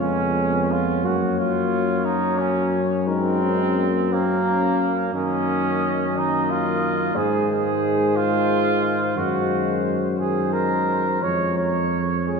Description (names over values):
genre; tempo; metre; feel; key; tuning
classical, hymn-like piece for brass band; 59 BPM (dotted quarters); 12/8; rubato; unclear; A4 = 440 Hz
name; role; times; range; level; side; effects
warm flugelhorn; melody; 0.0-12.4 s; Bb4 to Eb5; -28 LUFS; left 6 dB; none
mellow flugelhorn; second line; 0.0-12.4 s; Bb3 to Db5; -24 LUFS; right 4 dB; none
dark trombone; accompaniment; 0.0-12.4 s; Eb3 to Ab3; -29 LUFS; right 2 dB; none
mellow euphonium; accompaniment; 0.0-12.4 s; Ab3 to Eb4; -29 LUFS; left 5 dB; none
mellow tuba; bass; 0.0-12.4 s; F2 to Ab2; -24 LUFS; left 1 dB; none
room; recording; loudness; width
wet church reverb, RT60 3.5 s; minimal, uncompressed stereo recording; -19 LUFS; side -5 dB against mid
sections
0.0-12.4 A section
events
none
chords
0.0 Db7; 1.0 Gb; 5.1 Ebm7/Gb; 7.2 Ab; 9.2 Ab7/Gb; 11.2 Db/F